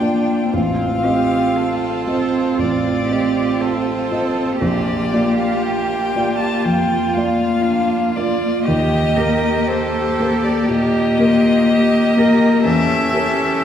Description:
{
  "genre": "classical, slow romantic movement for piano quintet",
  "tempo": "59 BPM",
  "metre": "4/4",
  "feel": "rubato",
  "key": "Bb major",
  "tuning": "A4 = 440 Hz",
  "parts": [
    { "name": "rich violin", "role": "melody", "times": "0.0-13.6 s", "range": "C5 to A5", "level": "-22 LUFS", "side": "left 2 dB", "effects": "none" },
    { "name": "rich violin", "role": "second line", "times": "0.0-13.6 s", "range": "F4 to G4", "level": "-27 LUFS", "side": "left 2 dB", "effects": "none" },
    { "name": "warm cello", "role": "second line", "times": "0.0-13.6 s", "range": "D4 to Bb4", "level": "-24 LUFS", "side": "right 4 dB", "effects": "none" },
    { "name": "rich viola", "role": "accompaniment", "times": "0.0-13.6 s", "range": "Bb3 to D4", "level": "-22 LUFS", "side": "right 1 dB", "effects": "none" },
    { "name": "warm grand piano", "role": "accompaniment", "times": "0.0-13.6 s", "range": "A1 to Eb5", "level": "-19 LUFS", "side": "left 1 dB", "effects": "none" }
  ],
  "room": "wet concert hall reverb, RT60 2.3 s",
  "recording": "heard from further back in the room",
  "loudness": "-15 LUFS",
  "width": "side -9 dB against mid",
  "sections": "0.0-13.6 A section",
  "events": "none",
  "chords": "0.0 Bb; 0.5 F7/A; 4.6 Bb; 8.7 Eb; 12.6 Edim7"
}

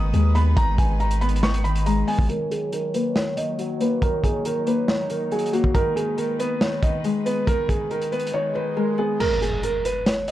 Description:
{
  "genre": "hip hop, trap",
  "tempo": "139 BPM",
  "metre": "4/4",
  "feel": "half-time",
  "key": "G# minor",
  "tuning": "A4 = 441 Hz",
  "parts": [
    { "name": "felt-muted upright piano", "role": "melody", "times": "0.0-10.3 s", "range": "F#4 to D#6", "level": "-25 LUFS", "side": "right 2 dB", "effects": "low-pass filter" },
    { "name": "Celtic harp", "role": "accompaniment", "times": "0.0-10.3 s", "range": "D#3 to B3", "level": "-27 LUFS", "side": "left 4 dB", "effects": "low-pass filter" },
    { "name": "dark chamber string section", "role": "sustained chords", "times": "0.0-9.2 s", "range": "F#3 to C#5", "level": "-36 LUFS", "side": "left 1 dB", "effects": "low-pass filter" },
    { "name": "long sustained 808-style bass", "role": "bass", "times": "0.0-2.3 s", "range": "G#1 to D#2", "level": "-20 LUFS", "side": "equal", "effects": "none" },
    { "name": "crunchy breakbeat drum kit", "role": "drums", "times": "0.1-10.3 s", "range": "crash cymbal, hi-hat, kick drum, snare drum", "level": "-25 LUFS", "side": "equal", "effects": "none" },
    { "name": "swell and impact", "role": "sound effects", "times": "8.0-10.3 s", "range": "none", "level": "-32 LUFS", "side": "equal", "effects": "none" }
  ],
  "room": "little or no reverb",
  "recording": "dry, gritty hardware recording",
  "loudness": "-20 LUFS",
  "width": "side -14 dB against mid",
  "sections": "0.0-2.3 A section; 2.3-9.2 B section; 9.2-10.3 C section",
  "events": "filter sweep 2.3-9.2; swell 8.0-9.2; silent gap 8.3-9.2; kick muted 9.2-10.3; impact 9.2-10.3",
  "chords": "0.0 G#m; 2.3 D#m7; 5.7 G#m; 9.2 N.C."
}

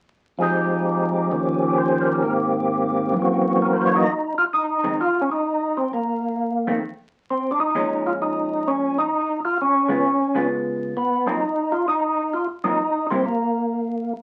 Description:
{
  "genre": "jazz",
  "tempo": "131 BPM",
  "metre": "4/4",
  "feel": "swing 67% on 8ths",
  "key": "F minor",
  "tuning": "A4 = 439 Hz",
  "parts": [
    { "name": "percussive tonewheel organ", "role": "melody", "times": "0.4-14.1 s", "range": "Eb2 to Eb5", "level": "-22 LUFS", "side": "equal", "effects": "slow rotary speaker, overdrive, chorus vibrato" },
    { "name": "vintage hollow-body jazz guitar", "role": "accompaniment", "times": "4.8-13.2 s", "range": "F2 to F4", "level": "-28 LUFS", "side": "equal", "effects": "none" }
  ],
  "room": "wet studio reverb, RT60 0.5 s",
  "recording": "very old 78 rpm record, vinyl crackle",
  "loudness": "-22 LUFS",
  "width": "mono",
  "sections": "0.4-4.1 A section; 4.1-14.2 B section",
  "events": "none",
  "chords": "0.4 Fm9; 1.3 Eb7; 2.2 Abmaj9; 3.1 Gb7#11; 4.1 Fm7; 5.9 Fadd11; 6.8 N.C.; 7.7 Bbm7; 9.6 Db7; 11.4 Gbmaj7#11; 13.2 N.C."
}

